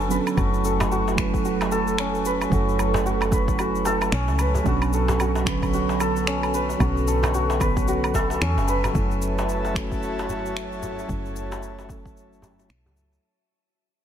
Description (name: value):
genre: organic downtempo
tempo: 112 BPM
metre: 4/4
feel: swing 60% on 16ths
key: F# minor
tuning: A4 = 440 Hz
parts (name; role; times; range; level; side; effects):
- muted felt-like synth keys; accompaniment; 0.0-13.3 s; D3 to A4; -27 LUFS; right 5 dB; chorus, sidechain pumping, low-pass filter, ping-pong delay
- santur; arpeggios; 0.0-12.3 s; C#4 to B4; -26 LUFS; left 1 dB; ping-pong delay
- woody FM bass; bass; 0.0-13.2 s; F#1 to E2; -27 LUFS; equal; sidechain pumping
- electronic cabasa, woodblock and finger snaps; drums; 0.0-13.2 s; none; -32 LUFS; right 1 dB; overdrive, soft clipping on snare
- electronic kick drum; drums; 0.4-12.1 s; none; -26 LUFS; equal; overdrive
- darbuka; percussion; 0.8-13.2 s; none; -32 LUFS; equal; none
- airy breathy pad; sustained chords; 9.0-13.2 s; F#4 to A5; -32 LUFS; left 1 dB; chorus, sidechain pumping
room: light reverb, digital ambience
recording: dense, heavily limited modern master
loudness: -20 LUFS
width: side -9 dB against mid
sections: 0.0-8.9 A section; 8.9-13.2 B section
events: kick drops out 8.4-8.9; fade-out 8.9-13.2; filter sweep on synth keys 8.9-13.2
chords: 0.4 F#m7; 4.7 Bm7; 8.9 F#m7